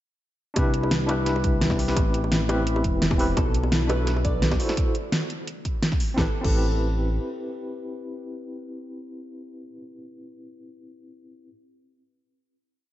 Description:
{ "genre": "liquid drum and bass", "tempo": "171 BPM", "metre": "4/4", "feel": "straight", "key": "A dorian", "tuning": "A4 = 439 Hz", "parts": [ { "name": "tine electric piano", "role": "accompaniment", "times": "0.5-11.5 s", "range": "C4 to C5", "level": "-29 LUFS", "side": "left 1 dB", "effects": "medium tremolo, analog delay" }, { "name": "smooth synth bass", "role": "bass", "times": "0.6-7.2 s", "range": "E1 to C2", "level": "-25 LUFS", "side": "equal", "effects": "none" }, { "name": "electronic kick drum", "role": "drums", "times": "0.6-6.5 s", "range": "none", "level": "-25 LUFS", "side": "equal", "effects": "none" }, { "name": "pop drum kit", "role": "drums", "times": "0.6-6.5 s", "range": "crash cymbal, hi-hat, snare drum", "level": "-28 LUFS", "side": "equal", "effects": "none" }, { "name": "bongos", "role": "percussion", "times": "0.6-4.6 s", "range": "none", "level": "-33 LUFS", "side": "left 1 dB", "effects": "none" }, { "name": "harp-like synth pluck", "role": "arpeggios", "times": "3.4-6.5 s", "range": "E4 to D5", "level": "-34 LUFS", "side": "equal", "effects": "chorus, ping-pong delay" } ], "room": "light reverb, digital ambience", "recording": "nothing above 7.8 kHz", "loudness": "-21 LUFS", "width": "side -14 dB against mid", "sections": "0.6-6.2 drop; 6.2-9.0 final chord", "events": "drop 0.6-6.2", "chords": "0.6 Cmaj9; 2.0 Am9; 3.4 Bm7; 4.6 Am6/E; 6.2 Am9" }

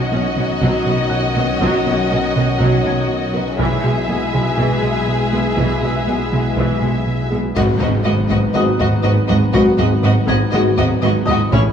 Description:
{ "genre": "cinematic, hybrid orchestral and electronic film score", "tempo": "121 BPM", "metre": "4/4", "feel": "straight", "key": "G# minor", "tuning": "A4 = 441 Hz", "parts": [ { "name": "warm symphonic violin section", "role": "melody", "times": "0.0-11.6 s", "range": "C#5 to E5", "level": "-25 LUFS", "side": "left 3 dB", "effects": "none" }, { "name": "warm symphonic violin section", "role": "second line", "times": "0.0-11.6 s", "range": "E4 to G#4", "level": "-24 LUFS", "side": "left 3 dB", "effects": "none" }, { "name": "hollow soft pad", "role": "sustained chords", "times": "0.0-11.7 s", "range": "E3 to C#5", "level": "-25 LUFS", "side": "left 1 dB", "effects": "chorus" }, { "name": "mellow French horn section", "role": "sustained chords", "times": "0.0-11.7 s", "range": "D#3 to F#4", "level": "-24 LUFS", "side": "left 4 dB", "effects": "none" }, { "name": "wide detuned saw bass", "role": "bass", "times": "0.0-11.7 s", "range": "G#1 to B1", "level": "-25 LUFS", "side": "equal", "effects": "chorus" }, { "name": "felt-muted upright piano", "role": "texture", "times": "0.0-11.7 s", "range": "D#5 to G#6", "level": "-30 LUFS", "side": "left 3 dB", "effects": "digital delay" }, { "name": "rich symphonic viola section", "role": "accompaniment", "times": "0.1-11.6 s", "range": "E3 to C#4", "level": "-25 LUFS", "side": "right 1 dB", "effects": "none" }, { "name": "smooth gliding synth bass", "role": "riff", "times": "0.1-11.7 s", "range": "G#2 to B3", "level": "-22 LUFS", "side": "right 1 dB", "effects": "none" }, { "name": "clear symphonic double bass section", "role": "bass", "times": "0.1-11.6 s", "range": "G#1 to B1", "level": "-23 LUFS", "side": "right 3 dB", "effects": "none" }, { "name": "rich symphonic cello section", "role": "bass", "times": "0.1-11.6 s", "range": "G#2 to B2", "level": "-23 LUFS", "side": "right 2 dB", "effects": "none" }, { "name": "solo taiko drums", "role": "drums", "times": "0.6-11.7 s", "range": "none", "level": "-26 LUFS", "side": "equal", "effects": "none" }, { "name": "impact", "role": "sound effects", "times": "7.6-9.5 s", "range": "none", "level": "-27 LUFS", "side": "left 1 dB", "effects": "none" } ], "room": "moderate scoring stage reverb, RT60 1.5 s", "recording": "small room ambience", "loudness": "-14 LUFS", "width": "side -8 dB against mid", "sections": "0.0-7.6 A section; 7.6-11.7 B section", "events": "impact 7.6-9.5", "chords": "0.0 Badd9; 3.6 E/B; 7.6 G#m7" }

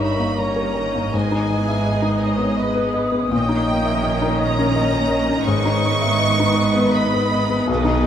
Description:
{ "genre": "classical, romantic movement for piano and orchestra", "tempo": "82 BPM", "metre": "3/4", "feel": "rubato", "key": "G# minor", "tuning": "A4 = 441 Hz", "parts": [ { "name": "clear grand piano", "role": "melody", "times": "0.0-8.1 s", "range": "B1 to E5", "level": "-20 LUFS", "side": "left 2 dB", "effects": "none" }, { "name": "clear studio violin section", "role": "melody", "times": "0.0-8.1 s", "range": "B4 to C#6", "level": "-26 LUFS", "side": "right 1 dB", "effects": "none" }, { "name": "bright large flute ensemble", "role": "second line", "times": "0.0-8.1 s", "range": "C#6 to D#6", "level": "-28 LUFS", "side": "equal", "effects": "none" }, { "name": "warm clarinet", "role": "second line", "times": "0.0-8.1 s", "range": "G#4 to C#5", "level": "-31 LUFS", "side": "left 3 dB", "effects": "none" }, { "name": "warm studio violin section", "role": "second line", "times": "0.0-8.1 s", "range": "G#4 to E5", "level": "-30 LUFS", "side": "left 2 dB", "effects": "none" }, { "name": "dark studio viola section", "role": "accompaniment", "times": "0.0-8.1 s", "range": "D#3 to D#4", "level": "-28 LUFS", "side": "equal", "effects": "none" }, { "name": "clear studio double bass section", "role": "bass", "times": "0.0-8.1 s", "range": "G1 to B1", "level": "-26 LUFS", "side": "right 4 dB", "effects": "none" }, { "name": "rich studio cello section", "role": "bass", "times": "0.0-8.1 s", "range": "G2 to B2", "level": "-25 LUFS", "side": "right 3 dB", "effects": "none" } ], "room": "light reverb", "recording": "close, detailed microphones", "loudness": "-17 LUFS", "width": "side -9 dB against mid", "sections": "0.0-8.1 A section", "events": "none", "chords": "0.0 D#7/G; 1.1 G#m; 3.3 D#7/A#; 5.5 G#m" }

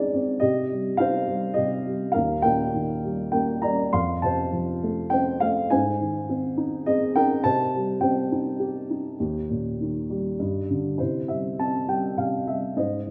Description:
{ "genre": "classical, lyrical solo piano", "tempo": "102 BPM", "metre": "3/4", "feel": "rubato", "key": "unclear", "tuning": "A4 = 438 Hz", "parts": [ { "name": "dark upright piano", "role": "solo", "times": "0.0-13.1 s", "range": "Eb2 to C6", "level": "-25 LUFS", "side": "equal", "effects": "none" } ], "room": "wet recital hall reverb, RT60 1.4 s", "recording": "none", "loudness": "-25 LUFS", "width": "mono", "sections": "0.0-11.0 A section; 11.0-13.1 B section", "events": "none", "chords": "0.4 Cm; 2.1 Eb; 3.9 F; 5.7 Abadd9; 7.4 Cm; 9.2 Eb; 10.4 G5; 11.0 C" }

